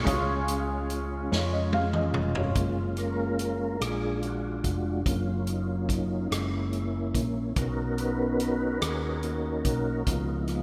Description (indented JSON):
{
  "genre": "slow gospel",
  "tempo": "48 BPM (dotted quarters)",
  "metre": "6/8",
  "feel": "straight",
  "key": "F# major",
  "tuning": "A4 = 440 Hz",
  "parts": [
    { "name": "warm grand piano", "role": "accompaniment", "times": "0.0-3.8 s", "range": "C#3 to E#5", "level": "-33 LUFS", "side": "equal", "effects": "analog chorus" },
    { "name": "mellow tonewheel organ", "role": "sustained chords", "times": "0.0-10.6 s", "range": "E#3 to B4", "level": "-32 LUFS", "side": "equal", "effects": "slow rotary speaker, chorus vibrato" },
    { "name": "hollow-body short-scale fingered electric bass", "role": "bass", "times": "0.0-10.6 s", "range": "E#1 to E#2", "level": "-34 LUFS", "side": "equal", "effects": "none" },
    { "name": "swinging big-band drum kit", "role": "drums", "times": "0.1-10.6 s", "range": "hi-hat, kick drum, rim click, snare drum, toms", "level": "-34 LUFS", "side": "equal", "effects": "gated reverb" }
  ],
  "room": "wet lush hall reverb, RT60 2.7 s",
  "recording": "bright 1980s-style digital production",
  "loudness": "-29 LUFS",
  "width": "mono",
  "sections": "0.1-2.6 A section; 2.6-10.6 B section",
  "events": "tonewheel organ solo 0.1-2.6, 2.6-10.6; drum fill 1.3-2.6",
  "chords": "0.1 C#; 2.6 F#maj7; 3.8 A#7; 5.1 D#m9/F#; 6.3 F#7; 7.6 Bmaj7; 10.1 C#7"
}